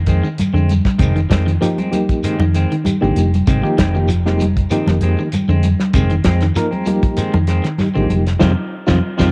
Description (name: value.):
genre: afrobeat.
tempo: 97 BPM.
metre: 4/4.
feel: swing 53% on 16ths.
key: F dorian.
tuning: A4 = 440 Hz.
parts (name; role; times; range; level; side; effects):
clean electric guitar; arpeggios; 0.0-9.3 s; C3 to F3; -24 LUFS; equal; none.
hollow-body short-scale fingered electric bass; bass; 0.0-9.3 s; F1 to F2; -19 LUFS; equal; none.
clean electric guitar; stabs; 0.1-9.3 s; Eb3 to C4; -27 LUFS; equal; none.
damped 70s drum kit; drums; 0.1-9.3 s; hi-hat, kick drum, snare drum; -21 LUFS; equal; cassette tape.
shekere; percussion; 0.1-9.3 s; none; -29 LUFS; equal; none.
congas; percussion; 0.4-9.3 s; none; -23 LUFS; equal; none.
bright reed electric piano; accompaniment; 1.6-9.3 s; F3 to Bb4; -23 LUFS; equal; fast tremolo.
room: light reverb, small room ambience.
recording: home recording on cassette.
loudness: -16 LUFS.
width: mono.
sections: 0.0-9.3 A section.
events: band accent 8.4-9.3.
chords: 0.0 Fm7.